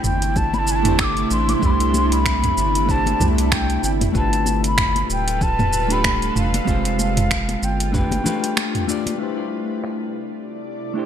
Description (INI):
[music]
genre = sunset chillout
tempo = 95 BPM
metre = 4/4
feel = swing 57% on 16ths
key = C major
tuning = A4 = 441 Hz
[part]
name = hollow wooden flute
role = melody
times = 0.0-8.9 s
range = F5 to E6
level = -24 LUFS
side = left 2 dB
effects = ping-pong delay
[part]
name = semi-hollow electric guitar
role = accompaniment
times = 0.0-11.1 s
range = Ab3 to D5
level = -25 LUFS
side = moving between left 8 dB and right 6 dB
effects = auto-pan, low-pass filter, digital delay
[part]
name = shimmering ambient pad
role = sustained chords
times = 0.0-11.1 s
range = C3 to D5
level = -26 LUFS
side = equal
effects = chorus, built-in reverb
[part]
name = round analog bass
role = bass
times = 0.0-8.2 s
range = D1 to C2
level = -22 LUFS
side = equal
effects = none
[part]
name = deep house drum kit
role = drums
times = 0.0-11.1 s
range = finger snaps, hi-hat, shaker, toms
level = -23 LUFS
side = right 2 dB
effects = low-pass filter on perc, low-pass filter on toms, low-pass filter on snare, low-pass filter on hats, gated reverb
[part]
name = electronic kick drum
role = drums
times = 0.4-8.1 s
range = none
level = -25 LUFS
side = equal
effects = none
[part]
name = congas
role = percussion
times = 0.4-9.2 s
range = none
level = -29 LUFS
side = left 4 dB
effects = none
[sound]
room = light reverb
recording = bright 1980s-style digital production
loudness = -17 LUFS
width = side -9 dB against mid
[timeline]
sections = 0.0-9.2 A section; 9.2-11.1 B section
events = filter sweep on clean electric guitar 0.0-9.2; filter sweep on ambient pad 9.2-11.1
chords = 0.0 C69; 3.8 G9; 6.7 Fm; 7.9 G7; 9.2 C69